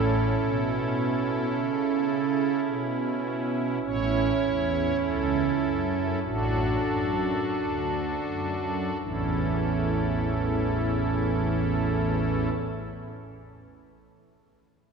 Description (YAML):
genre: classical, chorale-style piece for pipe organ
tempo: 40-55 BPM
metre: 4/4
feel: rubato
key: A major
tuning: A4 = 440 Hz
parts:
  - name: pipe organ, strings celeste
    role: solo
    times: 0.0-12.5 s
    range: A1 to C#5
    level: -24 LUFS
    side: right 2 dB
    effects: none
room: wet church reverb, RT60 3.5 s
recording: heard from further back in the room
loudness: -24 LUFS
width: side -5 dB against mid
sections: 0.0-3.8 A section; 3.8-9.0 B section; 9.0-14.8 C section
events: slowing down 0.0-9.0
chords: 0.0 A; 6.2 D/A; 9.0 A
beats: 0.38 1.49 2.64 | 3.82 5.00 6.23 7.54 | 9.01 10.47 11.92